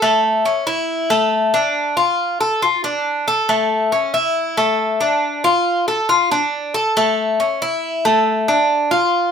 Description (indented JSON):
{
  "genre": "latin",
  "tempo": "138 BPM",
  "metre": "4/4",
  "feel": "straight",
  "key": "D minor",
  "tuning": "A4 = 440 Hz",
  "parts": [
    { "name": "Cuban tres", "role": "solo", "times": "0.0-9.3 s", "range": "A3 to A4", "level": "-15 LUFS", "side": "left 1 dB", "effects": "none" }
  ],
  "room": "moderate studio reverb, RT60 0.5 s",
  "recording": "band playing live in one room",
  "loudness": "-15 LUFS",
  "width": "side -7 dB against mid",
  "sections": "0.0-9.3 A section",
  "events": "none",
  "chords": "none"
}